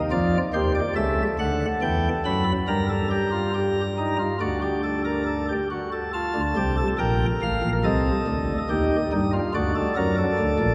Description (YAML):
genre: classical, baroque-style 3-part fugue for pipe organ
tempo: 70 BPM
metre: 4/4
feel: straight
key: G minor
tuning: A4 = 440 Hz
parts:
  - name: pipe organ, sparkling flutes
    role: solo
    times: 0.1-10.7 s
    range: A1 to B5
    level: -24 LUFS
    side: equal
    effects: none
room: wet cathedral reverb, RT60 4.2 s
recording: heard from further back in the room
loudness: -24 LUFS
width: mono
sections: 0.0-6.1 A section; 6.1-10.7 B section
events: none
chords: 0.0 Cmadd11; 1.0 A7/C#; 2.7 Gm; 4.4 D; 6.1 Gm; 7.8 Am7b5/C; 9.6 D